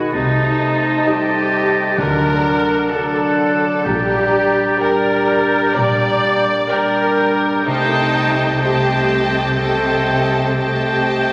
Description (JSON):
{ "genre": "classical", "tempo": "63 BPM", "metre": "4/4", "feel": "rubato", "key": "G minor", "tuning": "A4 = 440 Hz", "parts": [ { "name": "breathy clarinet", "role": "second line", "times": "0.0-11.3 s", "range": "C5 to Eb5", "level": "-27 LUFS", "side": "equal", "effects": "none" }, { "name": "mellow bassoon", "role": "accompaniment", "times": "0.0-11.3 s", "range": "C3 to A3", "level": "-27 LUFS", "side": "equal", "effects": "none" }, { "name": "rich studio viola section", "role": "accompaniment", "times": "0.0-11.3 s", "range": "Eb4 to D5", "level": "-22 LUFS", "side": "equal", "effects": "none" }, { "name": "concert harp", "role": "arpeggios", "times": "0.0-11.3 s", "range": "Bb2 to Eb6", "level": "-29 LUFS", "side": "equal", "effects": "none" }, { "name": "clear oboe", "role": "second line", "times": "0.1-11.3 s", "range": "F#5 to A5", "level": "-25 LUFS", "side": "equal", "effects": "none" }, { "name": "mellow hollow silver concert flute", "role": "second line", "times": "0.1-11.3 s", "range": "A5 to Bb5", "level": "-30 LUFS", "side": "equal", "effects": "none" }, { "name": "dark French horn section", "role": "sustained chords", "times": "0.1-11.3 s", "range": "F#3 to G4", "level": "-25 LUFS", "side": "equal", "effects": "none" }, { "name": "rich chamber cello section", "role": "bass", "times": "0.1-11.3 s", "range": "Bb2 to D3", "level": "-27 LUFS", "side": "equal", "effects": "none" }, { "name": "rich chamber double bass section", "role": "bass", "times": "0.1-11.3 s", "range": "Bb1 to D2", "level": "-29 LUFS", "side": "equal", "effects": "none" }, { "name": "clear chamber violin section", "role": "melody", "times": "1.1-11.3 s", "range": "A5 to Bb5", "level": "-31 LUFS", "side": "equal", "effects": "none" }, { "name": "rich chamber violin section", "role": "second line", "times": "1.1-11.3 s", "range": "D5 to G5", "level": "-28 LUFS", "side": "equal", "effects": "none" }, { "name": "timpani", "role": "percussion", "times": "2.0-3.3 s", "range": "D3", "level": "-30 LUFS", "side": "equal", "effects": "none" } ], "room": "wet concert hall reverb, RT60 2.4 s", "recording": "vinyl crackle", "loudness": "-16 LUFS", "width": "mono", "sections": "0.0-11.3 A section", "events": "none", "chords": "0.1 Adim/C; 2.0 D; 3.9 Gm/Bb; 7.7 Am7b5/C" }